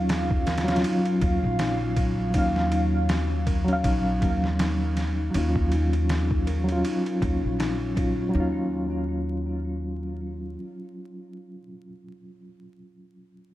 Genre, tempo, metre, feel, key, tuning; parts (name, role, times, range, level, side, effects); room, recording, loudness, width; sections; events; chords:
trip hop; 80 BPM; 4/4; swing 57% on 16ths; Eb minor; A4 = 441 Hz
reed electric piano; accompaniment; 0.0-13.5 s; Gb3 to F5; -28 LUFS; equal; fast tremolo, harmonic tremolo, low-pass filter, tape echo
dark analog pad; sustained chords; 0.0-8.4 s; Gb3 to F5; -32 LUFS; equal; chorus
music box; arpeggios; 0.0-8.7 s; Db4 to Bb4; -32 LUFS; left 2 dB; low-pass filter, tape echo
upright bass; bass; 0.0-10.6 s; Bb1 to Eb2; -27 LUFS; equal
trip hop sampler-style drum kit; drums; 0.1-8.2 s; kick drum, ride cymbal, snare drum; -28 LUFS; equal; overdrive
light reverb, digital ambience; echo-heavy mix, vinyl crackle; -22 LUFS; side -15 dB against mid
0.0-8.3 A section; 8.3-11.3 B section
filter sweep on reed electric piano 0.0-8.3
0.0 Ebm9